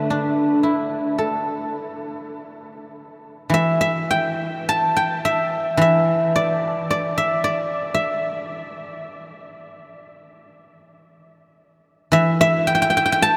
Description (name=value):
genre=chinese traditional, Chinese solo plucked strings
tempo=51-58 BPM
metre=4/4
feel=rubato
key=unclear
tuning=A4 = 440 Hz
part: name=guzheng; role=solo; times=0.0-13.4 s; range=D3 to A5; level=-21 LUFS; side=equal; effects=none
room=wet huge ambient reverb, RT60 7.7 s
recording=in a vast, echoing space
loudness=-20 LUFS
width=mono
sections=0.0-3.5 A section; 3.5-13.4 B section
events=none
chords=none